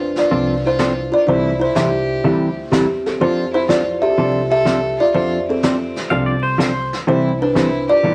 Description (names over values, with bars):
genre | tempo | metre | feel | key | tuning
country, western swing | 124 BPM | 4/4 | swing 69% on 8ths | unclear | A4 = 439 Hz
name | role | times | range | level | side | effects
kalimba | melody | 0.0-8.1 s | C4 to E5 | -20 LUFS | equal | none
clear fiddle | second line | 0.0-8.1 s | C4 to A4 | -31 LUFS | equal | none
upright bass | bass | 0.0-8.1 s | G1 to F2 | -29 LUFS | equal | none
vintage brush drum kit | drums | 0.2-8.1 s | brushed snare drum, hi-hat, snare drum | -31 LUFS | equal | none
hollow-body jazz guitar | accompaniment | 0.3-8.1 s | C3 to A4 | -21 LUFS | equal | none
pedal steel guitar | second line | 6.1-7.0 s | C5 to F5 | -24 LUFS | equal | none
room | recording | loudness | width
moderate studio reverb, RT60 0.5 s | vinyl crackle | -17 LUFS | mono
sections
0.0-8.1 A section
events
none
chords
0.0 F6; 1.3 C6; 3.2 F6; 7.1 C6